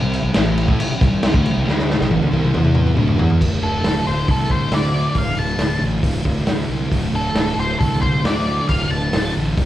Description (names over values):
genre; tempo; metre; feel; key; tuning
garage rock duo or trio; 137 BPM; 4/4; straight; unclear; A4 = 436 Hz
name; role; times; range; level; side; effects
thick fuzz guitar; riff; 0.0-9.7 s; D2 to E4; -22 LUFS; equal; distortion
fuzz fingered electric bass; bass; 0.0-9.7 s; D1 to A2; -22 LUFS; equal; overdrive
vintage drum kit; drums; 0.1-9.7 s; crash cymbal, hi-hat, kick drum, snare drum, toms; -20 LUFS; equal; none
octave-fuzz lead guitar; melody; 3.6-9.3 s; A4 to A5; -23 LUFS; left 1 dB; distortion
room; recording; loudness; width
light reverb; band playing live in one room; -16 LUFS; side -13 dB against mid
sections
0.0-3.4 A section; 3.4-9.7 B section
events
drum fill 1.7-3.4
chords
0.0 C5; 2.5 E5; 3.0 Dsus2; 3.4 D5